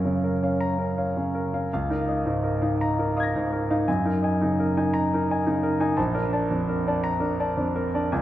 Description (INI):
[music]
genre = classical, impressionist solo piano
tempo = 56 BPM (dotted quarters)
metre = 6/8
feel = rubato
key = unclear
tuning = A4 = 438 Hz
[part]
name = clear concert grand piano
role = solo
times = 0.0-8.2 s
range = Bb1 to Bb6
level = -22 LUFS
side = equal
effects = none
[sound]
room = wet scoring stage reverb, RT60 1.8 s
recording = none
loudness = -22 LUFS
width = side -13 dB against mid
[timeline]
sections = 0.0-8.2 A section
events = none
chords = 0.0 Gbmaj7; 1.7 Db69; 3.9 Gb69; 6.0 Bbmaj7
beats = 0.57 | 1.69 2.79 | 3.87 4.95 | 5.98 7.04 | 8.12